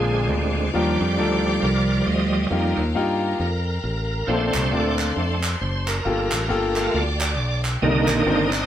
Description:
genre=uptempo gospel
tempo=136 BPM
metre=4/4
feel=swing 60% on 8ths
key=Bb major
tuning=A4 = 440 Hz
part: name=bright grand piano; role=accompaniment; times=0.0-8.7 s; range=G2 to C5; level=-25 LUFS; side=left 3 dB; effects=none
part: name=bright tonewheel organ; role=sustained chords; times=0.0-8.7 s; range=D3 to Eb5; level=-23 LUFS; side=right 2 dB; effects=slow rotary speaker, overdrive, chorus vibrato
part: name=clear studio string section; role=sustained chords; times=0.0-8.7 s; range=C5 to D6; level=-32 LUFS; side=left 3 dB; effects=none
part: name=fingered electric bass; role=bass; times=0.0-8.6 s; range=Gb1 to G2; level=-24 LUFS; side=equal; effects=none
part: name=group handclap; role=percussion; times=4.5-8.6 s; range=none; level=-28 LUFS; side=right 2 dB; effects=none
room=moderate studio reverb, RT60 0.6 s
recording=band playing live in one room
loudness=-19 LUFS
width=side -11 dB against mid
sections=0.0-8.7 A section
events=tonewheel organ solo 0.0-8.7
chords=0.0 Bb7; 0.7 Ebmaj9; 2.5 F9sus4; 4.3 Bbmaj9; 6.1 Gm9; 7.8 Cm9

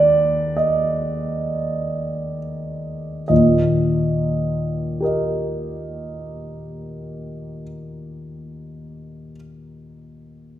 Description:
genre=classical, romantic nocturne for solo piano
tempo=30-39 BPM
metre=3/4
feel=rubato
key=Eb major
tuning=A4 = 441 Hz
part: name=warm concert grand piano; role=solo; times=0.0-10.6 s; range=Eb2 to Eb5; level=-20 LUFS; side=equal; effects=none
room=wet recital hall reverb, RT60 1.4 s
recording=recorded in a church or concert hall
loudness=-19 LUFS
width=side -12 dB against mid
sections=0.0-3.3 A section; 3.3-8.6 B section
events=slowing down 0.0-3.3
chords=0.0 Abm/Eb; 3.3 Eb

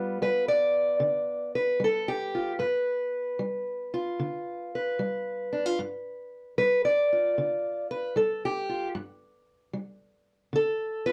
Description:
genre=acoustic country blues, solo or duo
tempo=76 BPM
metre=4/4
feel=swing 67% on 8ths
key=G mixolydian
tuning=A4 = 439 Hz
part: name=fingerpicked steel-string acoustic guitar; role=solo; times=0.0-11.1 s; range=G2 to D5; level=-28 LUFS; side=equal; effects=none
room=moderate small room ambience, RT60 0.5 s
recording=close, detailed microphones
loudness=-28 LUFS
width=mono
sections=0.0-11.1 A section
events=steel-string acoustic guitar solo 0.0-11.1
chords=0.0 G7

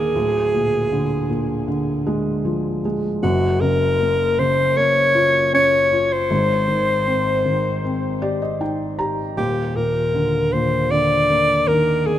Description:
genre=pop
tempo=78 BPM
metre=4/4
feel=straight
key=unclear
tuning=A4 = 440 Hz
part: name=breathy alto saxophone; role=melody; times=0.0-12.2 s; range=Gb4 to D5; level=-18 LUFS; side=equal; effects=ping-pong delay
part: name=felt-muted upright piano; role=accompaniment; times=0.0-12.2 s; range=D1 to Bb5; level=-21 LUFS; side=left 1 dB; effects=none
room=moderate plate reverb, RT60 3.1 s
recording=rough home demo mix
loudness=-17 LUFS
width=side -11 dB against mid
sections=0.0-12.2 A section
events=felt piano fill 7.8-9.4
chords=0.2 Bb7/D; 3.2 Gbmaj7; 6.3 Abmaj7; 9.4 Eb5

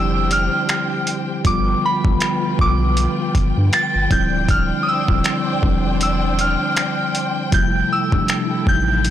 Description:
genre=contemporary R&B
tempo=79 BPM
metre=4/4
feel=swing 58% on 16ths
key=D minor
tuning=A4 = 440 Hz
part: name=soft synth bell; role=melody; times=0.0-9.1 s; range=B5 to A6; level=-21 LUFS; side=right 1 dB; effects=chorus, ping-pong delay
part: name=mellow tine electric piano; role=accompaniment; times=0.0-9.1 s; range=C3 to F4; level=-22 LUFS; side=left 1 dB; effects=medium stereo tremolo
part: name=warm studio string section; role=sustained chords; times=0.0-9.1 s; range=D4 to G5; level=-26 LUFS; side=left 2 dB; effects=sidechain pumping
part: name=warm sub bass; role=bass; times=0.0-9.1 s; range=D1 to G2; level=-21 LUFS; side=equal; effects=none
part: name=dusty soul sampler-style drum kit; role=drums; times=0.3-9.1 s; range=finger snaps, hi-hat, kick drum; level=-20 LUFS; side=equal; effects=overdrive, soft clipping on snare
room=light reverb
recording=blown-out, overdriven recording, overdrive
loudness=-16 LUFS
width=side -11 dB against mid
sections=0.0-9.1 A section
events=none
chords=0.0 Dm11; 1.4 G7; 4.1 Dm11; 7.5 Fmaj9

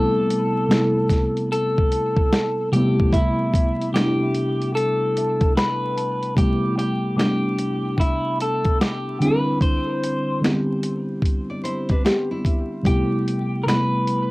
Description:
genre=lo-fi hip hop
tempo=74 BPM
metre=4/4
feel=swing 66% on 16ths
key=A minor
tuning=A4 = 440 Hz
part: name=electric guitar through a small old amp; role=melody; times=0.0-14.3 s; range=E4 to C5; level=-23 LUFS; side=left 1 dB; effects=phaser, cassette tape, tape echo
part: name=muted felt-like synth keys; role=accompaniment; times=0.0-14.3 s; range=C3 to C6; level=-22 LUFS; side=equal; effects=chorus, cassette tape
part: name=dusty soul sampler-style drum kit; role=drums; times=0.3-14.3 s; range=finger snaps, hi-hat, kick drum, snare drum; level=-21 LUFS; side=equal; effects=cassette tape
part: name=nylon-string guitar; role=second line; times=11.5-12.8 s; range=G3 to D5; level=-25 LUFS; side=equal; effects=cassette tape, tape echo, plate reverb
room=moderate booth ambience, RT60 0.2 s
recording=home recording on cassette, vinyl crackle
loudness=-18 LUFS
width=side -21 dB against mid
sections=0.0-6.4 A section; 6.4-14.3 B section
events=none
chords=0.0 Am7; 2.7 Am9; 9.2 Cmaj9; 12.9 Am7

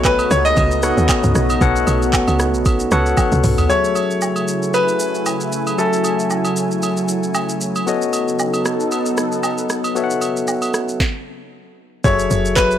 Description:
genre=amapiano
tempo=115 BPM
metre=4/4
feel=swing 55% on 16ths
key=F# dorian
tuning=A4 = 440 Hz
part: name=clear concert grand piano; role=melody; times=0.0-7.6, 12.0-12.8 s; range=A4 to D#5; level=-20 LUFS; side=left 1 dB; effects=analog delay
part: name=barky tine electric piano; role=accompaniment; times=0.0-12.8 s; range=F#3 to G#5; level=-20 LUFS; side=moving between left 6 dB and right 1 dB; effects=auto-pan
part: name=lush unison pad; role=sustained chords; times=0.0-11.0 s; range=C#3 to G#5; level=-24 LUFS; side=right 1 dB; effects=chorus, sidechain pumping
part: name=woody log drum bass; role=bass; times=0.0-3.7, 12.0-12.8 s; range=F#1 to D#2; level=-19 LUFS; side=right 1 dB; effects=none
part: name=smooth R&B drum kit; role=drums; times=0.0-12.8 s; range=handclaps, hi-hat, kick drum, rim click, shaker, snare drum, toms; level=-21 LUFS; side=right 1 dB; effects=none
part: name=woodblock and agogo bells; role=percussion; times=0.0-10.7 s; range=none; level=-26 LUFS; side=right 3 dB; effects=none
room=light reverb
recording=dry, gritty hardware recording, transformer saturation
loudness=-15 LUFS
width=side -10 dB against mid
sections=0.0-3.7 A section; 3.7-12.0 B section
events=drop 0.0-3.7; drum fill 3.2-3.7; stop 11.0-12.0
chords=0.0 B9; 3.7 F#m9; 7.9 B9; 12.0 F#m9

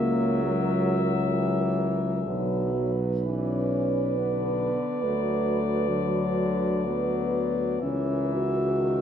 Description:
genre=classical, hymn-like piece for brass band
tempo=56-71 BPM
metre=3/4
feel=rubato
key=B minor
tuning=A4 = 440 Hz
part: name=warm flugelhorn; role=melody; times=0.0-9.0 s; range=D5 to E5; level=-33 LUFS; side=left 9 dB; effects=none
part: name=mellow French horn section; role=second line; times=0.0-9.0 s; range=A#4 to B4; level=-32 LUFS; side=right 8 dB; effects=none
part: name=clear trombone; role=accompaniment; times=0.0-9.0 s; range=D3 to F#3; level=-34 LUFS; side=right 3 dB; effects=none
part: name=dark euphonium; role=accompaniment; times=0.0-9.0 s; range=F#3 to F#4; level=-27 LUFS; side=left 2 dB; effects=none
part: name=mellow tuba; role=bass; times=0.0-9.0 s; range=B1 to D2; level=-29 LUFS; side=right 1 dB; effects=none
room=wet recital hall reverb, RT60 1.6 s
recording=none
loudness=-24 LUFS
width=side -8 dB against mid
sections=0.0-9.0 A section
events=none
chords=0.0 F#7/C#; 2.2 Bm; 5.0 Bm/D; 7.8 A#dim/C#

